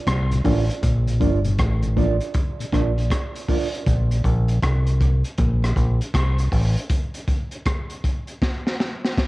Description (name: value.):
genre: dub reggae.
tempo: 79 BPM.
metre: 4/4.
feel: swing 64% on 16ths.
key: Bb major.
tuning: A4 = 439 Hz.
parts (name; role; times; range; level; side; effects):
deep dub fingered electric bass; bass; 0.1-6.8 s; G1 to C2; -20 LUFS; equal; none.
crunchy breakbeat drum kit; drums; 0.1-9.3 s; hi-hat, kick drum, rim click, snare drum; -23 LUFS; equal; cassette tape.
mellow tonewheel organ; accompaniment; 0.3-9.1 s; Bb2 to D4; -28 LUFS; left 6 dB; chorus vibrato, high-pass filter, cassette tape.
mellow electric guitar; accompaniment; 0.4-3.8 s; D4 to D5; -27 LUFS; right 7 dB; high-pass filter, cassette tape, dub echo.
room: light reverb, small room ambience.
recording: home recording on cassette.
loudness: -19 LUFS.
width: side -20 dB against mid.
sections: 0.0-9.3 A section.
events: break 6.9-9.3; drum fill 8.4-9.3.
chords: 0.0 Bb.